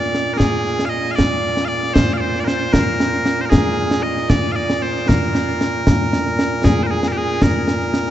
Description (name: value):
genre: scottish traditional, Scottish pipe music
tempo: 77 BPM (dotted quarters)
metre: 6/8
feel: straight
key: Bb mixolydian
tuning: A4 = 439 Hz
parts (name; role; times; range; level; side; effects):
- loud bright bagpipes; melody; 0.0-8.1 s; Bb2 to F5; -19 LUFS; right 1 dB; none
- concert snare drum and concert bass drum; drums; 0.0-8.1 s; none; -18 LUFS; equal; none
room: wet cathedral reverb, RT60 6.0 s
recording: in a vast, echoing space, nothing above 8.0 kHz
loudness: -15 LUFS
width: side -12 dB against mid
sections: 0.0-6.6 A section; 6.6-8.1 B section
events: none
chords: none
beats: | 0.41 1.19 | 1.97 2.74 | 3.52 4.30 | 5.08 5.86 | 6.64 7.42